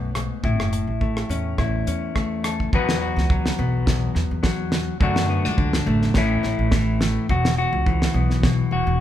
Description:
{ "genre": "highlife guitar band", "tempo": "105 BPM", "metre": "4/4", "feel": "swing 55% on 16ths", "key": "unclear", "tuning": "A4 = 440 Hz", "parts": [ { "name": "clean electric guitar", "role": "accompaniment", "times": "0.0-9.0 s", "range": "E2 to B4", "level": "-23 LUFS", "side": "left 3 dB", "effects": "none" }, { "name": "upright bass", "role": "bass", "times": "0.0-9.0 s", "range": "E1 to F#2", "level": "-24 LUFS", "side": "right 1 dB", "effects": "none" }, { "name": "damped 70s drum kit", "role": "drums", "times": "0.2-8.6 s", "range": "hi-hat, kick drum, rim click, snare drum", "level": "-23 LUFS", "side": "equal", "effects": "none" } ], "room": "light reverb", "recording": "band playing live in one room", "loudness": "-19 LUFS", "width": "side -11 dB against mid", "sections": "0.0-2.7 A section; 2.7-9.0 B section", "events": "none", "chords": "0.4 A; 2.7 Esus2; 5.0 D; 6.2 A; 7.3 Esus2", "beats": "| 0.43 1.01 1.58 2.15 | 2.73 3.30 3.87 4.44 | 5.01 5.58 6.15 6.72 | 7.29 7.86 8.43 9.00" }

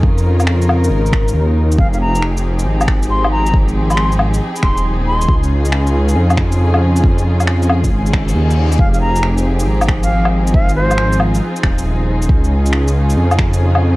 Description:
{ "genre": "future garage", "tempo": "137 BPM", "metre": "4/4", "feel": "swing 67% on 16ths", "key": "F minor", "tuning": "A4 = 440 Hz", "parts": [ { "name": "rich symphonic string section", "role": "sustained chords", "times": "0.0-14.0 s", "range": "Db3 to Bb4", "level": "-20 LUFS", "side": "equal", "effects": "sidechain pumping" }, { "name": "swelling detuned saw bass", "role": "bass", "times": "0.0-14.0 s", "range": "Eb1 to F2", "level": "-14 LUFS", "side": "equal", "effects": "tube saturation, sidechain pumping" }, { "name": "electronic kick drum", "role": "drums", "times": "0.0-13.5 s", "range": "none", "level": "-15 LUFS", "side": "equal", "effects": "none" }, { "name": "electronic shaker, woodblock and finger snaps", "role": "drums", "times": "0.2-13.8 s", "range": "none", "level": "-20 LUFS", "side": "left 1 dB", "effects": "none" }, { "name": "bright reedy wooden flute", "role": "melody", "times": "1.8-5.3, 8.8-11.2 s", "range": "C5 to C6", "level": "-21 LUFS", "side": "equal", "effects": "tape echo" }, { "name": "reverse cymbal", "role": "sound effects", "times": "8.1-8.8 s", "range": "none", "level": "-28 LUFS", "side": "left 4 dB", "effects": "none" } ], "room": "digital ambience", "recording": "cassette tape", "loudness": "-12 LUFS", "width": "side -20 dB against mid", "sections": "0.0-14.0 A section", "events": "reverse cymbal 8.1-8.8", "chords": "0.0 Dbadd9; 1.8 Fm7; 5.3 Dbadd9; 8.8 Fm7; 12.3 Dbadd9", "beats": "| 0.03 0.47 0.91 1.34 | 1.78 2.22 2.66 3.10 | 3.54 3.97 4.41 4.85 | 5.29 5.72 6.16 6.60 | 7.04 7.48 7.91 8.35 | 8.79 9.23 9.67 10.10 | 10.54 10.98 11.42 11.86 | 12.29 12.73 13.17 13.61" }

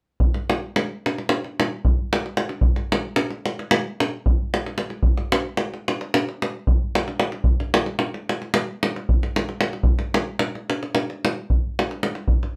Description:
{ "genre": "balkan folk", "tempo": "224 BPM (eighths)", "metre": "9/8", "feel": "straight", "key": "none", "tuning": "none", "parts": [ { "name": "davul", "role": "percussion", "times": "0.2-12.5 s", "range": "none", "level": "-23 LUFS", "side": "equal", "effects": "none" } ], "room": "moderate studio reverb, RT60 0.5 s", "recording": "none", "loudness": "-23 LUFS", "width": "mono", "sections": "0.2-12.6 A section", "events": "none", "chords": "none", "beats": "| 0.19 0.46 0.73 1.00 1.27 1.54 1.81 2.07 2.34 | 2.61 2.88 3.15 3.42 3.69 3.95 4.22 4.49 4.76 | 5.03 5.30 5.57 5.83 6.10 6.37 6.64 6.91 7.17 | 7.44 7.71 7.98 8.25 8.51 8.78 9.05 9.32 9.59 | 9.85 10.12 10.39 10.66 10.92 11.19 11.46 11.73 11.99 | 12.26" }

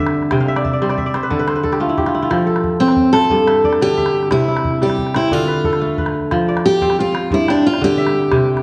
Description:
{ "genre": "west african traditional, West African string and xylophone music", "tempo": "120 BPM (dotted quarters)", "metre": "12/8", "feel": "straight", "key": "F lydian", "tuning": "A4 = 440 Hz", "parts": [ { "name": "kora", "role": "arpeggios", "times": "0.0-8.6 s", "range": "G2 to G5", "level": "-19 LUFS", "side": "equal", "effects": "none" }, { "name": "calabash", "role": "percussion", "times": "0.1-8.6 s", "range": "none", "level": "-28 LUFS", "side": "equal", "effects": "none" }, { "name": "picked steel-string acoustic guitar", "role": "melody", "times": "2.8-8.6 s", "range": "C4 to A4", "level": "-17 LUFS", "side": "equal", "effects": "slapback echo" } ], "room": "wet recital hall reverb, RT60 1.7 s", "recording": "worn, warbling old tape, cassette tape, warbly pitch drift", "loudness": "-16 LUFS", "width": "mono", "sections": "0.0-6.3 A section; 6.3-8.6 B section", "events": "kora fill 0.3-2.3; steel-string acoustic guitar solo 6.3-8.6", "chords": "0.3 C; 1.3 D5; 2.3 F; 3.3 G5; 4.3 C; 5.3 Dm; 6.3 F5; 7.3 G5", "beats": "| 0.31 0.81 1.30 1.80 | 2.30 2.80 3.30 3.81 | 4.31 4.81 5.31 5.81 | 6.31 6.81 7.31 7.81 | 8.31" }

